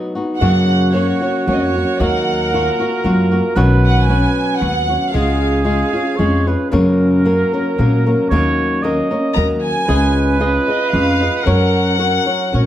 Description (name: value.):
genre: mexican folk, mariachi.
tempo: 114 BPM.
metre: 3/4.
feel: swing 54% on 8ths.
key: F# major.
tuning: A4 = 439 Hz.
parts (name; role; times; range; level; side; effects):
flamenco guitar; accompaniment; 0.0-12.7 s; F#2 to D#5; -18 LUFS; left 2 dB; none.
warm chamber violin section; melody; 0.4-6.4, 9.3-12.7 s; C#5 to A#5; -21 LUFS; right 1 dB; none.
warm trumpet; second line; 0.4-12.7 s; F#4 to D#5; -21 LUFS; right 4 dB; none.
upright bass; bass; 0.4-12.7 s; B1 to A#2; -17 LUFS; equal; none.
room: moderate recital hall reverb, RT60 1.8 s.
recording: none.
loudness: -13 LUFS.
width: side -12 dB against mid.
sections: 0.4-12.7 A section.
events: none.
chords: 0.4 F#; 2.0 D#madd9; 3.6 Badd9; 5.1 C#; 6.7 F#; 8.3 D#m7; 9.9 C#add9; 11.5 F#.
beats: | 0.41 0.94 1.47 | 2.00 2.52 3.04 | 3.56 4.08 4.61 | 5.13 5.65 6.18 | 6.72 7.25 7.78 | 8.31 8.83 9.36 | 9.88 10.41 10.93 | 11.46 11.99 12.53.